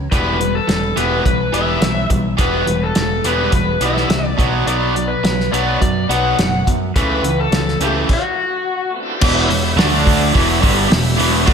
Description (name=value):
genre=classic rock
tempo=105 BPM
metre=4/4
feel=straight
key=E minor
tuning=A4 = 440 Hz
part: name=growling picked electric bass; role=bass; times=0.0-11.5 s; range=E1 to F#2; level=-21 LUFS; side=right 1 dB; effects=overdrive
part: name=overdriven slide guitar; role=melody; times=0.1-8.9 s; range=F#4 to F#5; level=-21 LUFS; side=left 3 dB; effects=slapback echo
part: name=crunchy overdriven guitar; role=riff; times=0.1-11.5 s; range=E2 to D4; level=-18 LUFS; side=right 1 dB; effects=none
part: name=cloth-damped thuddy drum kit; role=drums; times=0.1-11.5 s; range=crash cymbal, hi-hat, kick drum, snare drum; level=-18 LUFS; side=equal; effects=none
part: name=bright tonewheel organ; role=sustained chords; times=8.9-11.5 s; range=A3 to E5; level=-24 LUFS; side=equal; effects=overdrive, fast rotary speaker
room=moderate lush hall reverb, RT60 2.2 s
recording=big arena sound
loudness=-14 LUFS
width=side -6 dB against mid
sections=0.0-9.2 A section; 9.2-11.5 B section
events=stop 8.1-9.2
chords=0.1 Em; 4.4 B5; 6.9 A/C#; 8.1 N.C.; 9.2 Em; 9.8 D5; 10.3 Em